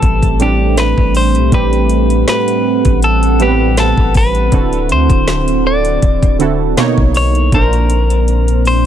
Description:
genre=contemporary R&B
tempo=80 BPM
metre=4/4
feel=swing 54% on 16ths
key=A dorian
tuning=A4 = 440 Hz
part: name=clean electric guitar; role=melody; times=0.0-8.9 s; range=G4 to D5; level=-17 LUFS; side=left 2 dB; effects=digital delay
part: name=warm analog keys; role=accompaniment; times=0.0-8.9 s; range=A2 to C#5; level=-18 LUFS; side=right 4 dB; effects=chorus
part: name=deep dark ambient pad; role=sustained chords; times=0.0-8.9 s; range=D3 to F#5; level=-18 LUFS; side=right 3 dB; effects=chorus, built-in reverb, sidechain pumping
part: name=long sustained 808-style bass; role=bass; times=0.0-8.9 s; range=D1 to D2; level=-14 LUFS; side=left 1 dB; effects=none
part: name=smooth R&B drum kit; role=drums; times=0.0-8.8 s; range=hi-hat, kick drum, snare drum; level=-15 LUFS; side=left 1 dB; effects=vintage 12-bit sampler grit
room=little or no reverb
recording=none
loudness=-10 LUFS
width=side -10 dB against mid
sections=0.0-8.9 A section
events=drum fill 7.5-8.9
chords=0.0 Am9; 4.5 D9; 6.8 Bmaj9; 7.5 Bbadd9

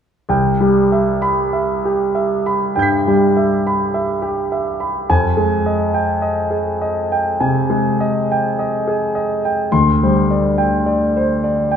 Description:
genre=classical, impressionist solo piano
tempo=48-54 BPM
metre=4/4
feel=rubato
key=C major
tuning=A4 = 444 Hz
part: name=clear concert grand piano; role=solo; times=0.3-11.8 s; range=C2 to B6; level=-14 LUFS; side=equal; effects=none
room=wet recital hall reverb, RT60 1.5 s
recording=recorded in a church or concert hall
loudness=-14 LUFS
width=side -8 dB against mid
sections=0.3-11.8 A section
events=none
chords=0.3 Cmaj7; 5.1 Fm9; 9.7 D7sus4

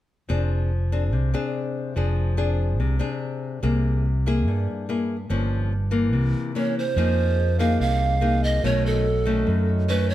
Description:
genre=bossa nova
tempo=144 BPM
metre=4/4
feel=straight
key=F dorian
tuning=A4 = 440 Hz
part: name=nylon-string guitar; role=accompaniment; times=0.3-10.1 s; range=F#2 to Ab4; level=-25 LUFS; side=left 4 dB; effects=none
part: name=fingered electric bass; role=bass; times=0.3-10.1 s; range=F1 to G2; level=-22 LUFS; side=equal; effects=none
part: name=mellow hollow polished pan flute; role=melody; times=6.6-10.1 s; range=A4 to F5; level=-25 LUFS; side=right 4 dB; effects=none
part: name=vibraphone with medium mallets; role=accompaniment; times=7.0-10.1 s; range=F#4 to Eb5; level=-35 LUFS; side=right 5 dB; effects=none
room=light reverb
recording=none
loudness=-21 LUFS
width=side -13 dB against mid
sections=0.3-7.0 A section; 7.0-10.1 B section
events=none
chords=0.3 Fm6; 3.6 C7b13; 5.3 Gm7b5; 6.1 C7b9; 7.0 Fm7; 8.6 B9

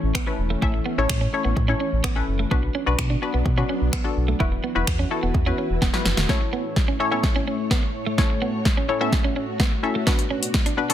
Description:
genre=dance-pop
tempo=127 BPM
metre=4/4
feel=straight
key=A major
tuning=A4 = 439 Hz
part: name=punchy chord stab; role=accompaniment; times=0.0-10.9 s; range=B3 to E5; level=-26 LUFS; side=left 4 dB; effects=chorus, sidechain pumping
part: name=soft string machine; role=sustained chords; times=0.0-10.9 s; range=A2 to D5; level=-30 LUFS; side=left 1 dB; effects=ensemble chorus, sidechain pumping
part: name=sub bass with octave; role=bass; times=0.0-6.3 s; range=E1 to B2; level=-24 LUFS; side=equal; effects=sidechain pumping
part: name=clean electric guitar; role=riff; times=0.1-10.9 s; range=A3 to E4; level=-29 LUFS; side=right 4 dB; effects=analog chorus
part: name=deep house drum kit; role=drums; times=0.1-10.9 s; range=finger snaps, hi-hat, kick drum, snare drum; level=-22 LUFS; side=equal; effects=overdrive, soft clipping on snare
room=light reverb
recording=dense, heavily limited modern master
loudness=-20 LUFS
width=side -11 dB against mid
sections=0.0-6.3 A section; 6.3-10.9 B section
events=drum fill 5.8-6.3, 6.3-10.9; build-up 6.3-10.9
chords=0.0 A; 2.5 Bm; 4.4 Esus2; 6.3 A; 10.1 Bm

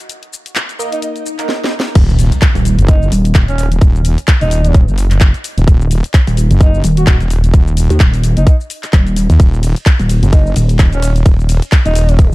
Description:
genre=bass house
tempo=129 BPM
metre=4/4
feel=swing 57% on 16ths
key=Eb minor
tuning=A4 = 441 Hz
part: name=garage drum kit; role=drums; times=0.0-12.3 s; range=crash cymbal, handclaps, hi-hat, ride cymbal, shaker, snare drum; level=-21 LUFS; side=left 1 dB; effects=none
part: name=band-passed chord stab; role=stabs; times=0.8-1.5 s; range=Bb3 to Gb5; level=-26 LUFS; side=right 2 dB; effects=phaser, sidechain pumping, dub echo
part: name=mellow alto saxophone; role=melody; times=0.9-12.3 s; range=Db4 to Gb4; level=-23 LUFS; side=right 1 dB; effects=dub echo
part: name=swell and impact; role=sound effects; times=1.2-3.8 s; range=none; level=-20 LUFS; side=equal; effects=none
part: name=wobble bass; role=bass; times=2.0-12.3 s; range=Eb1 to Eb2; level=-11 LUFS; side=equal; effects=chorus, tube saturation, sidechain pumping
part: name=electronic kick drum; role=drums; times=2.0-12.3 s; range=none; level=-8 LUFS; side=equal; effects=none
part: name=pulsing pluck wobble bass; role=bass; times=2.6-3.3, 6.3-10.8 s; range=Eb1 to Eb2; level=-11 LUFS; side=equal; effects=chorus, overdrive, sidechain pumping
room=little or no reverb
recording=dark, warm production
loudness=-9 LUFS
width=side -20 dB against mid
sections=0.0-2.0 A section; 2.0-12.3 B section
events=swell 1.2-2.0; drum fill 1.5-2.0; drop 2.0-12.3; impact 2.0-3.8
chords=0.0 Eb5

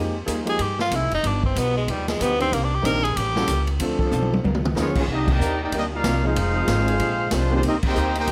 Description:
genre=jazz, big band swing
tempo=188 BPM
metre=4/4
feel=swing 61% on 8ths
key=C minor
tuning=A4 = 440 Hz
part: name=archtop guitar, miked and amplified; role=accompaniment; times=0.0-8.3 s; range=F2 to Bb4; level=-35 LUFS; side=equal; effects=none
part: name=clear baby grand piano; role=accompaniment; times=0.0-7.6 s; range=Eb3 to A4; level=-30 LUFS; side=equal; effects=none
part: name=upright bass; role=bass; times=0.0-8.3 s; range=F1 to G2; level=-27 LUFS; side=equal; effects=none
part: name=clear trombone section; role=sustained chords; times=0.3-8.3 s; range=D3 to Bb4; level=-33 LUFS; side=equal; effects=none
part: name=swinging big-band drum kit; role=drums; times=0.3-8.3 s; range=crash cymbal, hi-hat, kick drum, ride cymbal, snare drum, toms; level=-29 LUFS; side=equal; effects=none
part: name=bright tenor saxophone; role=melody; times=0.5-3.7 s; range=G3 to Bb4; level=-26 LUFS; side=equal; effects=none
part: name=bright trumpet section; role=melody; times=4.8-8.3 s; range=Ab3 to G5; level=-28 LUFS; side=equal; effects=none
part: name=mellow trombone section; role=second line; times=4.8-8.3 s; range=F3 to G4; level=-30 LUFS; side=equal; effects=none
room=light reverb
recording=none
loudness=-22 LUFS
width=mono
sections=0.0-5.1 A section; 5.1-8.3 B section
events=tenor saxophone solo 0.0-5.1; drum fill 4.1-4.8; band accent 5.2, 7.8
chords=0.0 Fm11; 1.2 G7b13; 2.5 Cm9; 3.2 A7b9; 3.8 Dm7; 4.4 Db13; 5.1 Cm9; 6.4 Fm7; 7.0 Bb13; 7.6 Eb6

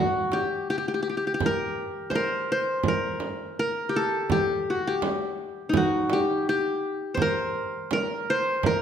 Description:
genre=Arabic maqam ensemble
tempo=83 BPM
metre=4/4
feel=straight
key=G maqam nahawand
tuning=A4 = 441 Hz
part: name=qanun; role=melody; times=0.0-8.8 s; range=Eb4 to C5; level=-25 LUFS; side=left 1 dB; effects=none
part: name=frame drum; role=percussion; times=0.3-8.8 s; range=none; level=-29 LUFS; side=right 6 dB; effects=none
room=moderate scoring stage reverb, RT60 1.6 s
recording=recorded in a church or concert hall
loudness=-24 LUFS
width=side -8 dB against mid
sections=0.0-8.8 A section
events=none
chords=none

